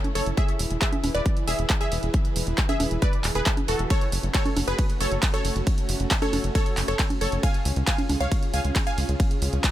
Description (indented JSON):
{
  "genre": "uplifting trance",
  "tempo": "136 BPM",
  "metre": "4/4",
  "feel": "straight",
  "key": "F# minor",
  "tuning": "A4 = 440 Hz",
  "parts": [
    { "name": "wide unison pluck", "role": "melody", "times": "0.0-9.2 s", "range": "F#4 to G#5", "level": "-29 LUFS", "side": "equal", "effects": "sidechain pumping, ping-pong delay" },
    { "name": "supersaw pad", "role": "sustained chords", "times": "0.1-9.7 s", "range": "C#3 to B4", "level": "-34 LUFS", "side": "right 1 dB", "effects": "sidechain pumping" },
    { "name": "punchy analog drum machine", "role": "drums", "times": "0.0-9.7 s", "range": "congas, handclaps, hi-hat, ride cymbal", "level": "-28 LUFS", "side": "right 1 dB", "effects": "sidechain pumping on hats, sidechain pumping on cymbals, sidechain pumping on perc" },
    { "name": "tight sequencer bass", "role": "bass", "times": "0.2-9.6 s", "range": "E1 to C#2", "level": "-27 LUFS", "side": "equal", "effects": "sidechain pumping" },
    { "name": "electronic kick drum", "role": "drums", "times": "0.4-9.7 s", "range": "none", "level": "-24 LUFS", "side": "equal", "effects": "none" }
  ],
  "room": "little or no reverb",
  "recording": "none",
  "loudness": "-22 LUFS",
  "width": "side -13 dB against mid",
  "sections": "0.0-9.7 A section",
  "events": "none",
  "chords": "0.4 E; 3.9 F#m; 7.4 C#"
}